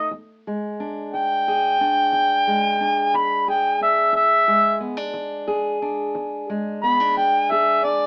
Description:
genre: acoustic country blues, solo or duo.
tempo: 60 BPM (dotted quarters).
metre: 12/8.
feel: straight.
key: E mixolydian.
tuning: A4 = 441 Hz.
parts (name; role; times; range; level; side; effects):
overdriven harmonica; melody; 0.0-8.1 s; D5 to B5; -20 LUFS; equal; none.
fingerpicked steel-string acoustic guitar; accompaniment; 0.0-8.1 s; E2 to G#4; -28 LUFS; equal; none.
room: moderate small room reverb, RT60 0.6 s.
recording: rough home demo mix, AM radio sound.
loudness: -21 LUFS.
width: mono.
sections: 0.1-8.1 A section.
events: harmonica solo 0.1-8.1.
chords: 0.1 E7.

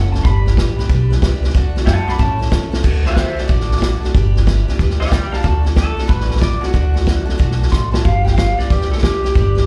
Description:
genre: rockabilly.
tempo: 185 BPM.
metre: 4/4.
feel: swing 65% on 8ths.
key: D major.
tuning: A4 = 440 Hz.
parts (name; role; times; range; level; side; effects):
electric guitar through a small old amp; melody; 0.0-9.7 s; F#4 to C6; -26 LUFS; equal; subtle chorus, slapback echo, tape echo.
picked steel-string acoustic guitar; accompaniment; 0.0-9.7 s; A2 to B4; -28 LUFS; equal; none.
upright bass; bass; 0.0-9.7 s; F#1 to A2; -20 LUFS; equal; none.
vintage drum kit; drums; 0.1-9.6 s; crash cymbal, hi-hat, kick drum, snare drum; -19 LUFS; equal; none.
room: little or no reverb.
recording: live gig heard through the venue's PA, club reverb.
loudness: -16 LUFS.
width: mono.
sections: 0.0-2.8 A section; 2.8-9.7 B section.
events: drum fill 2.7, 7.7-8.0; clean electric guitar solo 2.8-9.7.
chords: 0.2 G; 1.5 D; 2.2 A; 2.8 D; 4.1 G; 5.4 D; 8.0 G.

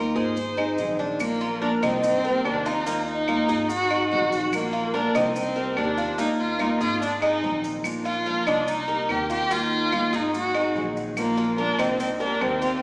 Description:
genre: latin, Cuban son and guajira.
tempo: 144 BPM.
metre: 4/4.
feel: straight.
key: Bb major.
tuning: A4 = 437 Hz.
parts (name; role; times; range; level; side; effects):
rich violin; melody; 0.0-12.8 s; Bb3 to C5; -25 LUFS; equal; none.
picked steel-string acoustic guitar; accompaniment; 0.0-12.8 s; C3 to Ab4; -27 LUFS; equal; none.
Cuban tres; arpeggios; 0.0-12.8 s; Bb3 to Bb4; -28 LUFS; equal; none.
upright bass; bass; 0.0-12.8 s; Ab1 to Eb2; -38 LUFS; equal; none.
maracas; percussion; 0.2-12.8 s; none; -45 LUFS; left 1 dB; none.
claves; percussion; 0.6-12.6 s; none; -35 LUFS; equal; none.
room: wet recital hall reverb, RT60 1.7 s.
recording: recorded in a church or concert hall, small speaker sound.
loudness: -21 LUFS.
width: side -29 dB against mid.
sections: 0.0-1.2 A section; 1.2-12.8 A section.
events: none.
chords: 0.4 Ab7; 1.2 Bb; 2.0 Cm7; 2.9 Ebsus2; 3.7 Ab7; 4.5 Bb; 5.4 Cm7; 6.2 Ebsus2; 7.0 Ab7; 7.8 Bb; 8.7 Cm7; 9.5 Ebsus2; 10.3 Ab7; 11.2 Bb; 12.0 Cm7.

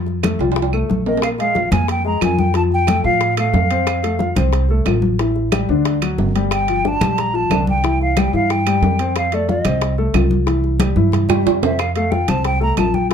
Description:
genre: Afro-Cuban jazz.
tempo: 182 BPM.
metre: 4/4.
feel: straight.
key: F major.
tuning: A4 = 441 Hz.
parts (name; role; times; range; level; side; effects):
warm baby grand piano; accompaniment; 0.0-13.1 s; D3 to F5; -21 LUFS; left 5 dB; none.
upright bass; bass; 0.0-13.1 s; G1 to A2; -20 LUFS; right 2 dB; none.
bongos; percussion; 0.1-13.1 s; none; -28 LUFS; left 8 dB; none.
congas; percussion; 0.1-13.1 s; none; -23 LUFS; left 2 dB; none.
claves; percussion; 0.2-12.9 s; none; -30 LUFS; right 8 dB; none.
timbales; percussion; 0.2-13.1 s; none; -25 LUFS; right 9 dB; none.
hollow concert flute; melody; 1.1-4.3, 6.5-13.1 s; D5 to Bb5; -20 LUFS; right 1 dB; plate reverb.
room: moderate club reverb, RT60 0.6 s.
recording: dark, warm production.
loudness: -15 LUFS.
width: side -7 dB against mid.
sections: 0.0-11.8 A section; 11.8-13.1 A section.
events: drum fill 0.4-1.2, 10.8-11.8.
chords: 0.0 F; 1.2 Bb5; 2.5 F; 5.2 A5; 5.9 Dadd11; 6.5 Gm7; 7.8 C; 9.2 F7; 10.5 C; 11.8 F.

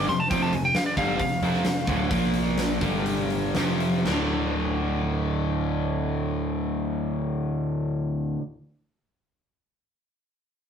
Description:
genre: hard rock.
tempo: 116-136 BPM.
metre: 4/4.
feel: straight.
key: D minor.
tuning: A4 = 445 Hz.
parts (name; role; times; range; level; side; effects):
lightly driven lead guitar; melody; 0.0-2.5 s; D5 to C6; -27 LUFS; right 1 dB; none.
cranked stack guitar; riff; 0.0-8.4 s; D2 to Bb3; -29 LUFS; left 6 dB; overdrive.
overdriven semi-hollow guitar; riff; 0.0-8.4 s; D2 to Bb3; -28 LUFS; right 5 dB; none.
picked electric bass; bass; 0.0-8.4 s; D1 to Bb1; -31 LUFS; equal; none.
huge arena drum kit; drums; 0.1-4.2 s; china cymbal, hi-hat, kick drum, snare drum; -29 LUFS; left 1 dB; none.
room: moderate studio reverb, RT60 0.7 s.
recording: rough rehearsal-room recording, warm saturation.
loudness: -23 LUFS.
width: side -8 dB against mid.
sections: 0.0-4.1 A section; 4.1-8.2 B section.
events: lead electric guitar solo 0.0-4.1; slowing down 0.3-4.1.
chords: 0.0 F5; 2.1 Bb5; 2.8 G5; 3.6 F5; 4.1 D5.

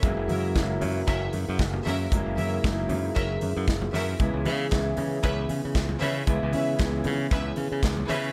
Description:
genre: disco.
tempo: 115 BPM.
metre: 4/4.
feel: swing 56% on 16ths.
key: C# dorian.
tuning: A4 = 440 Hz.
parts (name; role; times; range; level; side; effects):
clear grand piano; accompaniment; 0.0-8.3 s; C#3 to E4; -34 LUFS; equal; none.
mellow French horn section; sustained chords; 0.0-8.3 s; C#3 to G#4; -38 LUFS; equal; none.
modern bright fingered electric bass; bass; 0.0-8.3 s; F#1 to C#3; -32 LUFS; equal; none.
modern studio drum kit; drums; 0.0-8.2 s; hi-hat, kick drum, snare drum; -31 LUFS; equal; none.
congas; percussion; 0.0-8.2 s; none; -38 LUFS; equal; none.
rich studio string section; second line; 0.3-8.3 s; C#4 to E5; -36 LUFS; equal; none.
group handclap; percussion; 4.7-8.0 s; none; -45 LUFS; equal; none.
room: light reverb.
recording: none.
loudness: -26 LUFS.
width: mono.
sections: 0.0-8.3 A section.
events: none.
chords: 0.0 F#9; 4.2 C#m7.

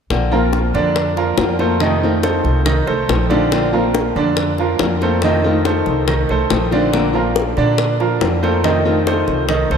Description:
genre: latin, Cuban son and guajira.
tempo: 140 BPM.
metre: 4/4.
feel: straight.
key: Bb major.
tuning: A4 = 440 Hz.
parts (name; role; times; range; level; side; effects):
flamenco guitar; accompaniment; 0.1-9.5 s; C3 to F4; -20 LUFS; left 4 dB; none.
upright bass; bass; 0.1-9.8 s; Bb1 to Bb2; -20 LUFS; equal; none.
bongos; percussion; 0.1-9.8 s; none; -23 LUFS; left 7 dB; none.
bright baby grand piano; arpeggios; 0.3-9.8 s; D3 to Eb5; -18 LUFS; right 4 dB; none.
room: wet cathedral reverb, RT60 5.6 s.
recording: in a vast, echoing space.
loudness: -14 LUFS.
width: side -7 dB against mid.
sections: 0.1-9.8 A section.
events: none.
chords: 0.1 Bbadd9; 1.8 F7; 3.5 Bbadd9; 5.2 F7; 6.9 Bbadd9; 8.6 F7.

